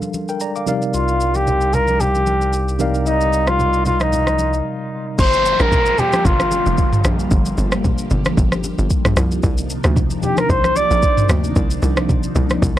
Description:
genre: amapiano.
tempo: 113 BPM.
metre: 4/4.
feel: swing 55% on 16ths.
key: G minor.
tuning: A4 = 440 Hz.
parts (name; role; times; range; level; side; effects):
mellow tine electric piano; accompaniment; 0.0-5.2 s; C3 to D6; -22 LUFS; equal; overdrive, medium stereo tremolo.
afro-pop drum kit; drums; 0.0-12.8 s; crash cymbal, kick drum, rim click, shaker, toms; -19 LUFS; equal; none.
congas; percussion; 0.0-12.8 s; none; -26 LUFS; equal; none.
trumpet with bucket mute; melody; 0.9-7.0, 10.2-11.3 s; Eb4 to D5; -18 LUFS; equal; tape echo.
saturated sub bass; bass; 0.9-4.6 s; C2; -21 LUFS; equal; none.
string machine, cellos; sustained chords; 5.2-12.8 s; C3 to G4; -24 LUFS; equal; phaser, ensemble chorus.
tight log drum bass; bass; 5.2-12.8 s; F1 to D2; -20 LUFS; equal; none.
downlifter; sound effects; 5.2-9.4 s; none; -27 LUFS; equal; none.
room: little or no reverb.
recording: dry, gritty hardware recording, cassette tape.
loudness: -15 LUFS.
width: side -13 dB against mid.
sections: 0.0-5.2 A section; 5.2-12.8 B section.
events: break 4.7-5.2; drop 5.2-12.8.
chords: 0.0 Gm7; 0.7 Cm11; 5.2 Gm7; 9.2 Cm11.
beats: 0.41 | 0.94 1.47 2.00 2.53 | 3.06 3.59 4.12 4.66 | 5.19 5.72 6.25 6.78 | 7.31 7.84 8.37 8.90 | 9.44 9.97 10.50 11.03 | 11.56 12.09 12.62.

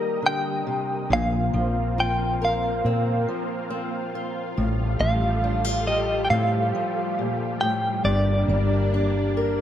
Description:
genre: acoustic folk-pop ballad.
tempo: 69 BPM.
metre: 4/4.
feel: straight.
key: Bb major.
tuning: A4 = 440 Hz.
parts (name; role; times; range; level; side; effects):
direct-recorded clean electric guitar; melody; 0.0-9.6 s; D5 to Bb5; -25 LUFS; right 1 dB; tremolo.
fingerpicked steel-string acoustic guitar; accompaniment; 0.0-9.6 s; G2 to Bb4; -28 LUFS; left 3 dB; none.
analog string pad; sustained chords; 0.0-9.6 s; G3 to Eb5; -30 LUFS; right 1 dB; ensemble chorus.
woody fretless electric bass; bass; 1.1-9.6 s; G1 to Bb2; -24 LUFS; equal; none.
room: light reverb.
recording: close, detailed microphones, lossy compression artefacts.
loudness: -21 LUFS.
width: side -10 dB against mid.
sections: 0.0-9.6 A section.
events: none.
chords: 0.0 Eb; 1.1 Bbsus2; 4.6 Fadd9/A; 8.1 Gm.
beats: 0.23 | 1.10 1.98 2.85 3.71 | 4.58 5.45 6.32 7.18 | 8.05 8.92.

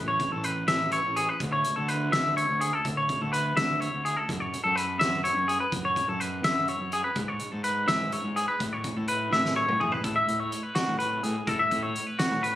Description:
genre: math rock and midwest emo.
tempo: 84 BPM (dotted quarters).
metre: 6/8.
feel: straight.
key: A major.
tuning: A4 = 440 Hz.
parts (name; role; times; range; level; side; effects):
fuzz fingered electric bass; bass; 0.0-12.6 s; A1 to A2; -32 LUFS; equal; overdrive.
twangy electric guitar; arpeggios; 0.1-12.6 s; F#4 to E5; -26 LUFS; left 1 dB; none.
loose indie drum kit; drums; 0.2-12.6 s; hi-hat, kick drum, snare drum, toms; -33 LUFS; equal; none.
room: light reverb.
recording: recorded on a phone in the room, club reverb, compression.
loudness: -24 LUFS.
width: side -13 dB against mid.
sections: 0.0-10.0 A section; 10.0-12.6 B section.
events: drum fill 9.3-10.0.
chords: 0.0 Aadd9; 1.4 Dsus2; 4.3 F#7(no3); 7.2 C#m7/G#; 8.6 Aadd9; 10.0 A69.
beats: 0.69 | 1.41 2.13 | 2.85 3.57 | 4.29 5.01 | 5.73 6.45 | 7.17 7.89 | 8.61 9.32 | 10.04 10.76 | 11.48 12.20.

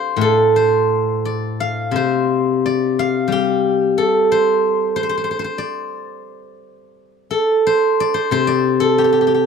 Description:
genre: chinese traditional, Chinese solo plucked strings.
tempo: 85-93 BPM.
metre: 2/4.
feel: rubato.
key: D yu mode.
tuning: A4 = 440 Hz.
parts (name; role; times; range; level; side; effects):
steel-string zither; solo; 0.0-9.5 s; A2 to F5; -15 LUFS; left 1 dB; none.
room: little or no reverb.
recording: dry, close 1970s-style studio recording.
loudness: -15 LUFS.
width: side -6 dB against mid.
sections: 0.0-7.0 A section; 7.0-9.5 B section.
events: none.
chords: none.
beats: | 0.19 0.89 | 1.59 2.28 | 2.97 3.63 | 4.29 4.94 | 5.59 6.27 | 6.97 7.66 | 8.32 8.98.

